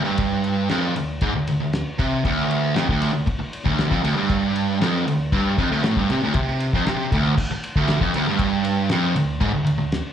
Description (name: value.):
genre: garage rock duo or trio.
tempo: 117 BPM.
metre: 4/4.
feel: straight.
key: unclear.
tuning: A4 = 440 Hz.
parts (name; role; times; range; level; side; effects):
fuzz guitar; riff; 0.0-10.0 s; D2 to C3; -20 LUFS; right 1 dB; distortion, slapback echo.
cloth-damped thuddy drum kit; drums; 0.2-10.0 s; crash cymbal, kick drum, ride cymbal, snare drum; -25 LUFS; left 1 dB; none.
room: moderate club reverb, RT60 0.6 s.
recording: live gig heard through the venue's PA, club reverb.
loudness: -19 LUFS.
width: side -9 dB against mid.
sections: 0.0-7.4 A section; 7.4-10.1 A section.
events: none.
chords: none.